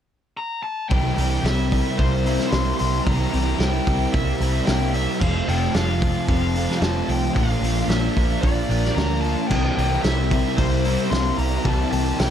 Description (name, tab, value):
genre	rock, shoegaze and dream pop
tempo	112 BPM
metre	4/4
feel	straight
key	C mixolydian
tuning	A4 = 435 Hz
part	smooth overdriven lead guitar	melody	0.4-12.3 s	C5 to C6	-28 LUFS	left 3 dB	tape echo
part	twangy electric guitar	arpeggios	0.9-12.3 s	F3 to A4	-33 LUFS	left 9 dB	ensemble chorus, tape echo
part	overdriven semi-hollow guitar	riff	0.9-12.3 s	Bb2 to Bb4	-26 LUFS	right 12 dB	reverse reverb
part	thick fuzz guitar	riff	0.9-12.3 s	F2 to C4	-26 LUFS	left 9 dB	distortion, analog chorus
part	vintage muted picked electric bass	bass	0.9-12.3 s	F1 to D2	-23 LUFS	equal	none
part	loose indie drum kit	drums	0.9-12.3 s	crash cymbal, hi-hat, kick drum, snare drum	-25 LUFS	equal	none
room	light reverb, small room reverb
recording	none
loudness	-19 LUFS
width	side -9 dB against mid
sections	0.9-12.3 A section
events	none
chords	0.0 N.C.; 0.9 C7; 5.2 F6; 7.4 Bb; 9.5 C7